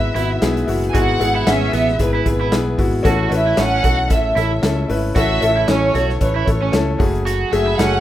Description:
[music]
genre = piano-driven pop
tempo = 114 BPM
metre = 4/4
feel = swing 56% on 16ths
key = A major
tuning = A4 = 440 Hz
[part]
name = warm studio violin section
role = melody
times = 0.0-8.0 s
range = B4 to G#5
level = -20 LUFS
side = equal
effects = none
[part]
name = bright concert grand piano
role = accompaniment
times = 0.0-8.0 s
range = G#2 to B4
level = -21 LUFS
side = left 3 dB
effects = none
[part]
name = chorused pulse-width pad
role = sustained chords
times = 0.0-8.0 s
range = B2 to G#4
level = -31 LUFS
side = right 1 dB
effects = none
[part]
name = picked electric bass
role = bass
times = 0.0-8.0 s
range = F#1 to C#2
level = -21 LUFS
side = equal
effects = none
[part]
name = overdriven electric guitar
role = riff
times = 0.2-8.0 s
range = B3 to F#4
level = -23 LUFS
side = right 7 dB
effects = none
[part]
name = modern studio drum kit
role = drums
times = 0.2-7.9 s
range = handclaps, hi-hat, kick drum, snare drum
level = -21 LUFS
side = equal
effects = none
[sound]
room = moderate studio reverb, RT60 0.6 s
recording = rough home demo mix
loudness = -15 LUFS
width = side -13 dB against mid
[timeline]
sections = 0.0-8.0 A section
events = none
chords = 0.0 A; 7.0 F#madd9

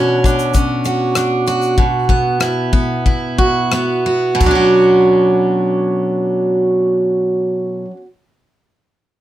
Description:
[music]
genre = acoustic pop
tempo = 86-100 BPM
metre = 4/4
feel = straight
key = B minor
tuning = A4 = 440 Hz
[part]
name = picked steel-string acoustic guitar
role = accompaniment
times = 0.0-8.1 s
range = B2 to F#4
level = -13 LUFS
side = right 1 dB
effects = none
[part]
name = modern studio drum kit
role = drums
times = 0.2-4.6 s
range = crash cymbal, kick drum, rim click, shaker, toms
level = -17 LUFS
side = left 2 dB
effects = none
[sound]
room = little or no reverb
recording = close, detailed microphones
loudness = -13 LUFS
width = side -13 dB against mid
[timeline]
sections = 0.0-4.4 A section; 4.4-7.2 B section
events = slowing down 0.0-4.4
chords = 0.0 Bmadd9; 1.8 Esus2/B; 4.4 Bmadd9

